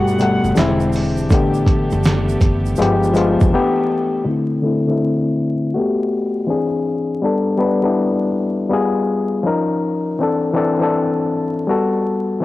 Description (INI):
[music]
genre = lo-fi hip hop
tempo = 81 BPM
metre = 4/4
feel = swing 66% on 16ths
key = G major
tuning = A4 = 440 Hz
[part]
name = hollow-body jazz guitar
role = melody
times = 0.0-3.5 s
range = G4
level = -29 LUFS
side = right 3 dB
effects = none
[part]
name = overdriven reed electric piano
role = accompaniment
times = 0.0-12.4 s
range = B2 to F#5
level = -16 LUFS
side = left 2 dB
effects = low-pass filter, cassette tape
[part]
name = warm studio string section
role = sustained chords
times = 0.0-4.3 s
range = D3 to F#5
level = -25 LUFS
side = right 1 dB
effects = cassette tape
[part]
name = upright bass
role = bass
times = 0.0-3.5 s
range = E1 to A1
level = -22 LUFS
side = right 1 dB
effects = tube saturation
[part]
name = tube shaker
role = percussion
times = 0.1-3.5 s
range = none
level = -42 LUFS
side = right 10 dB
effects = none
[part]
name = dusty soul sampler-style drum kit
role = drums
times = 0.2-3.5 s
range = hi-hat, kick drum, snare drum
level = -17 LUFS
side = equal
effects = overdrive, vintage 12-bit sampler grit, cassette tape
[sound]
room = light reverb, studio reverb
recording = home recording on cassette, vinyl crackle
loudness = -15 LUFS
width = side -16 dB against mid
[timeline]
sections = 0.0-4.3 A section; 4.3-12.4 B section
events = break 3.5-4.3; filter sweep on reed electric piano 4.3-12.4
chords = 0.0 Gmaj9; 0.6 E7alt; 1.3 A9sus4; 2.8 G7b9; 3.5 G69; 4.3 C69; 5.7 Gmaj9; 6.5 Eaug7; 7.2 A9sus4; 8.7 G7b9; 9.4 C#69; 10.2 C69; 11.7 Gmaj9